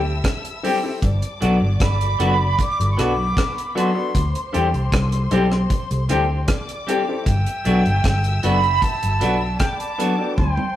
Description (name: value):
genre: lovers rock reggae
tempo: 77 BPM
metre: 4/4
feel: straight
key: G major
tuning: A4 = 440 Hz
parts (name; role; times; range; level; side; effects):
- breathy jazz flute; melody; 0.0-10.8 s; G5 to D6; -24 LUFS; right 3 dB; dub echo
- dark studio string section; second line; 0.0-10.8 s; B3 to E6; -32 LUFS; left 2 dB; none
- vintage muted fingered electric bass; bass; 0.0-10.6 s; F#1 to E2; -21 LUFS; equal; none
- deep reggae drum kit; drums; 0.2-10.8 s; hi-hat, kick drum, rim click, toms; -22 LUFS; equal; none
- clear grand piano; accompaniment; 0.6-10.3 s; B3 to A4; -28 LUFS; left 3 dB; none
- clean electric guitar; stabs; 0.6-10.1 s; F#3 to G4; -23 LUFS; left 1 dB; none
room: wet stone room reverb, RT60 1.1 s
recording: rough rehearsal-room recording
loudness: -17 LUFS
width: side -12 dB against mid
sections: 0.0-10.8 A section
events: drum fill 10.4-10.8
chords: 0.0 D7sus4; 1.0 Gmaj7; 4.1 D7sus4; 7.3 Gmaj7